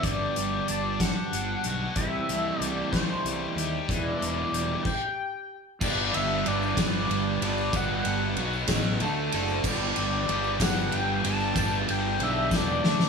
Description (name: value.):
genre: indie rock.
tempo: 63 BPM (dotted quarters).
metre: 6/8.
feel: straight.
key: G major.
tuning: A4 = 440 Hz.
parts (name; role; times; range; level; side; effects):
sync lead; melody; 0.0-13.1 s; C5 to A5; -31 LUFS; left 2 dB; chorus, tape echo.
overdriven electric guitar; riff; 0.0-13.1 s; G2 to B4; -32 LUFS; left 7 dB; none.
raw garage guitar; riff; 0.0-13.1 s; E2 to A4; -31 LUFS; right 6 dB; overdrive, lush chorus.
fuzz fingered electric bass; bass; 0.0-13.1 s; E1 to Eb2; -31 LUFS; left 1 dB; overdrive.
loose indie drum kit; drums; 0.0-13.1 s; crash cymbal, hi-hat, kick drum, ride cymbal, snare drum; -29 LUFS; left 1 dB; none.
tambourine; percussion; 5.8-12.7 s; none; -44 LUFS; right 15 dB; none.
room: light reverb.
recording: studio ambience.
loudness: -24 LUFS.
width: side -5 dB against mid.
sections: 0.0-5.8 A section; 5.8-13.1 B section.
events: stop 4.9-5.8; drum fill 12.5-13.1.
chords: 0.0 Gmaj7; 2.0 C6; 3.9 Em7; 5.8 Gmaj7; 8.4 B5; 9.0 D5; 9.6 G.